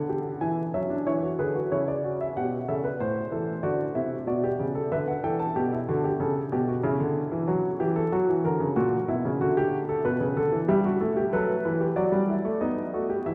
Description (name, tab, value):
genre	classical, baroque-style 3-part fugue for grand piano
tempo	94 BPM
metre	4/4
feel	straight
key	E minor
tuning	A4 = 440 Hz
part	warm baby grand piano	solo	0.0-13.3 s	A2 to A5	-27 LUFS	equal	none
room	wet cathedral reverb, RT60 4.5 s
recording	recorded in a church or concert hall, vinyl crackle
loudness	-27 LUFS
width	mono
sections	0.4-13.3 A section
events	none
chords	0.4 E7; 1.7 A/C# (rootless); 3.0 D7/A; 4.3 G/B; 6.9 C#dim (rootless); 8.1 F#; 9.4 Bm/D; 10.7 Em/G; 12.0 Em11/F#; 12.6 B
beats	| 0.41 1.06 1.70 2.35 | 2.99 3.63 4.28 4.92 | 5.57 6.21 6.85 7.49 | 8.13 8.77 9.41 10.05 | 10.69 11.33 11.97 12.61 | 13.26